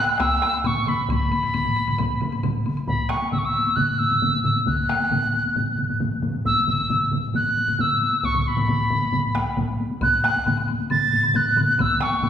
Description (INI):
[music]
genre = japanese traditional, taiko drum ensemble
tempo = 134 BPM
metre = 4/4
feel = straight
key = B suspended pentatonic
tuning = A4 = 440 Hz
[part]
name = reedy piccolo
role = melody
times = 0.0-12.3 s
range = B5 to A6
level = -22 LUFS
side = equal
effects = none
[part]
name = solo taiko drums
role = percussion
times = 0.1-12.3 s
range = none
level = -29 LUFS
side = left 3 dB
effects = none
[part]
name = woodblock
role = percussion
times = 0.1-2.9, 10.0-12.3 s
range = none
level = -38 LUFS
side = left 4 dB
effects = none
[part]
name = solo taiko drums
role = percussion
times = 0.2-12.3 s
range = none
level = -27 LUFS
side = left 1 dB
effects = none
[part]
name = taiko ensemble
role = percussion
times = 0.2-12.3 s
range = none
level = -28 LUFS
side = right 2 dB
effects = none
[part]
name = taiko ensemble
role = percussion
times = 0.2-11.9 s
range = none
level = -32 LUFS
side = left 1 dB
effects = none
[sound]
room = wet recital hall reverb, RT60 1.7 s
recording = recorded in a church or concert hall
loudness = -19 LUFS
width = side -9 dB against mid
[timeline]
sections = 0.0-2.9 A section; 2.9-12.3 B section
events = none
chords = none